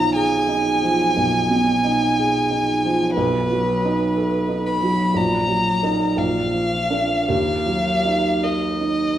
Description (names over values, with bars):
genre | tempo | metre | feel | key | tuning
classical, romantic duo for violin and grand piano | 52-62 BPM | 4/4 | rubato | Eb minor | A4 = 436 Hz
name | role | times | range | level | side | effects
rich violin | melody | 0.0-9.2 s | B4 to B5 | -21 LUFS | equal | none
clear baby grand piano | accompaniment | 0.0-9.2 s | Bb1 to Bb4 | -20 LUFS | right 2 dB | none
room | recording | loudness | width
wet recital hall reverb, RT60 1.3 s | heard from further back in the room | -17 LUFS | side -11 dB against mid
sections
0.0-9.2 A section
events
none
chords
0.0 Fm7b5/Cb; 3.2 B7; 5.2 Ebm/Bb; 6.2 Bb; 7.3 Ebm